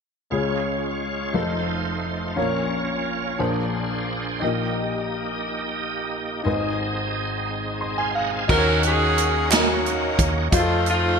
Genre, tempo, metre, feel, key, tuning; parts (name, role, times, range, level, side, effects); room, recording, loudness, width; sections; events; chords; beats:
slow gospel; 59 BPM (dotted quarters); 6/8; straight; A4 = 440 Hz
warm baby grand piano; accompaniment; 0.3-11.2 s; F1 to C6; -25 LUFS; left 2 dB; analog chorus
bright tonewheel organ; sustained chords; 0.3-11.2 s; Ab3 to C6; -27 LUFS; right 3 dB; fast rotary speaker, overdrive, chorus vibrato
clear saxophone section; melody; 8.5-11.2 s; A3 to Bb4; -21 LUFS; equal; ping-pong delay
hollow-body short-scale fingered electric bass; bass; 8.5-11.2 s; Eb2 to F2; -25 LUFS; equal
swinging big-band drum kit; drums; 8.5-11.0 s; crash cymbal, hi-hat, kick drum, snare drum; -22 LUFS; right 2 dB; gated reverb
group handclap; percussion; 9.5-9.8 s; -29 LUFS; right 5 dB
moderate plate reverb, RT60 3.0 s; bright 1980s-style digital production; -21 LUFS; side -6 dB against mid
0.3-8.5 A section; 8.5-11.2 B section
grand piano fill 7.5-8.5; tonewheel organ fill 7.5-8.5
0.3 Db; 1.3 F7; 2.4 Bbm; 3.4 Bb9; 4.4 Eb/Bb; 6.5 Ab; 8.5 Ebm7; 10.5 F7
| 0.32 1.35 | 2.37 3.40 | 4.42 5.44 | 6.46 7.48 | 8.50 9.51 | 10.53